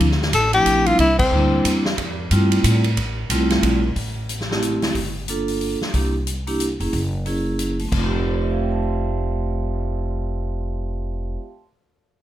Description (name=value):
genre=jazz, small-group swing and bop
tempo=182 BPM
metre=3/4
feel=swing 61% on 8ths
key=F major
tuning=A4 = 439 Hz
part: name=upright bass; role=bass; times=0.0-11.4 s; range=F1 to A2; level=-23 LUFS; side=equal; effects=none
part: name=swinging big-band drum kit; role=drums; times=0.0-9.8 s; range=crash cymbal, cymbal swell, hi-hat, kick drum, ride cymbal, snare drum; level=-25 LUFS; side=equal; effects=none
part: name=breathy tenor saxophone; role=melody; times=0.3-1.8 s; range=C4 to A4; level=-17 LUFS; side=left 2 dB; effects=none
part: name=vibraphone with medium hard mallets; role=accompaniment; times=0.5-11.6 s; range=F3 to C6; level=-22 LUFS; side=right 1 dB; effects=none
room=light reverb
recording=close, detailed microphones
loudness=-18 LUFS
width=side -12 dB against mid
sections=0.0-4.0 A section; 4.0-7.9 B section; 7.9-9.9 C section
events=band accent 1.2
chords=0.0 Dm7; 1.0 C7; 2.0 Fmaj7; 4.0 Am7; 5.0 Gm9; 5.9 C7; 6.9 Gb9; 7.9 Fmaj7